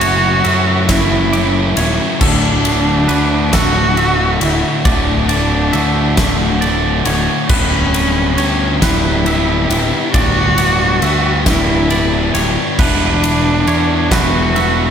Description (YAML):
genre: post-rock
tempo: 45 BPM (dotted quarters)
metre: 6/8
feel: straight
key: D major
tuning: A4 = 440 Hz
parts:
  - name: muted cello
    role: melody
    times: 0.0-14.9 s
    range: C#4 to F#4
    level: -18 LUFS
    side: right 1 dB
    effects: slapback echo, digital delay
  - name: twangy electric guitar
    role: arpeggios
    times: 0.0-14.9 s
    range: A4 to D6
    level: -24 LUFS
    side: right 3 dB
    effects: digital delay
  - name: overdriven electric guitar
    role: riff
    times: 0.0-14.9 s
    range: D2 to G4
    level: -20 LUFS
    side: right 10 dB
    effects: none
  - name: sludgy distorted guitar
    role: riff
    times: 0.0-14.9 s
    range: D2 to G4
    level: -20 LUFS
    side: left 11 dB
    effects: overdrive
  - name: fuzz fingered electric bass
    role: bass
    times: 0.0-14.9 s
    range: D1 to F#2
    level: -18 LUFS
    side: equal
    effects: overdrive
  - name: huge arena drum kit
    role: drums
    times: 0.0-14.8 s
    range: crash cymbal, kick drum, ride cymbal, snare drum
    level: -18 LUFS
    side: equal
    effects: none
room: light reverb, small room ambience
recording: none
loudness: -11 LUFS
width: side -8 dB against mid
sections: 0.0-14.9 A section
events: none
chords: 0.0 F#m7; 2.2 D; 7.5 G/D; 12.8 Em